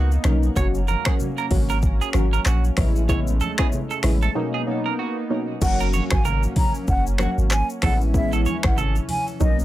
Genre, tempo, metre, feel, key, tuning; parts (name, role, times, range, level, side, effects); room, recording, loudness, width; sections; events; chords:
afrobeats; 95 BPM; 4/4; swing 58% on 16ths; F# major; A4 = 440 Hz
warm analog pad; sustained chords; 0.0-9.6 s; E3 to D#4; -31 LUFS; equal; chorus
semi-hollow electric guitar; riff; 0.0-8.9 s; F#4 to C#5; -29 LUFS; right 9 dB; digital delay
punchy sub bass; bass; 0.0-9.6 s; F#1 to C#2; -21 LUFS; equal
afro-pop drum kit; drums; 0.1-9.6 s; crash cymbal, finger snaps, handclaps, hi-hat, kick drum, rim click, shaker; -23 LUFS; equal
warm analog keys; accompaniment; 0.2-9.6 s; B2 to F#4; -26 LUFS; left 1 dB; chorus
congas; percussion; 0.2-9.3 s; -32 LUFS; right 1 dB
breathy hollow concert flute; melody; 5.6-9.6 s; D#5 to A#5; -27 LUFS; equal; digital delay
little or no reverb; -19 LUFS; side -15 dB against mid
0.0-5.6 A section; 5.6-9.6 B section
break 4.4-5.6
0.0 Bmaj7; 0.6 F#; 2.8 Amaj7; 4.4 Bmaj7; 5.6 F#; 7.8 Amaj7